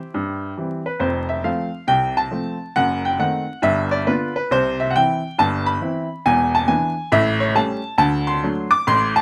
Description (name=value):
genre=jazz, stride piano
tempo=137 BPM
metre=4/4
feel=swing 65% on 8ths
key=unclear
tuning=A4 = 437 Hz
part: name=bright upright piano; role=solo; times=0.0-9.2 s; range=E1 to D6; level=-20 LUFS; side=equal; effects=none
room=light reverb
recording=close, detailed microphones, vinyl crackle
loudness=-20 LUFS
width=mono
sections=0.0-1.0 A section; 1.0-9.2 B section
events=none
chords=0.0 C; 1.0 F; 2.8 F#dim7; 3.6 G7; 4.5 C; 6.2 E7; 7.1 A7; 8.0 D7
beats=0.13 0.57 | 1.00 1.44 1.88 2.32 | 2.75 3.19 3.63 4.07 | 4.50 4.94 5.38 5.81 | 6.25 6.69 7.12 7.56 | 7.99 8.43 8.87